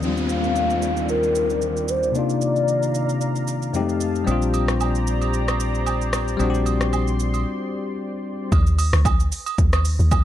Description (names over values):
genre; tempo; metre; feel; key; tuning
amapiano; 113 BPM; 4/4; swing 55% on 16ths; Bb major; A4 = 440 Hz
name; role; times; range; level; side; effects
bell-like tine electric piano; accompaniment; 0.0-8.5 s; Eb2 to G4; -24 LUFS; left 4 dB; low-pass filter
lush unison pad; sustained chords; 0.0-8.5 s; C3 to C6; -29 LUFS; right 1 dB; chorus, low-pass filter
deep house drum kit; drums; 0.0-10.2 s; hi-hat, kick drum, rim click, shaker; -24 LUFS; equal; vintage 12-bit sampler grit
downlifter; sound effects; 0.0-4.3 s; none; -31 LUFS; right 2 dB; none
hollow clarinet-like synth lead; melody; 0.3-3.7 s; Bb4 to F5; -23 LUFS; left 1 dB; chorus, low-pass filter, digital delay
deep dub fingered electric bass; bass; 4.3-7.4 s; Bb1; -23 LUFS; equal; none
agogo bells and woodblock; percussion; 4.3-10.2 s; none; -30 LUFS; right 9 dB; none
deep log drum bass; bass; 8.5-10.2 s; D2 to Eb2; -18 LUFS; equal; none
room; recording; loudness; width
digital ambience; dark, warm production; -19 LUFS; side -12 dB against mid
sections
0.0-8.5 A section; 8.5-10.2 B section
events
filter sweep 0.0-8.5; break 7.5-8.5; drop 8.5-10.2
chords
0.0 Ebmaj13; 2.1 Cm11; 3.7 F9; 4.3 Bb69; 8.5 N.C.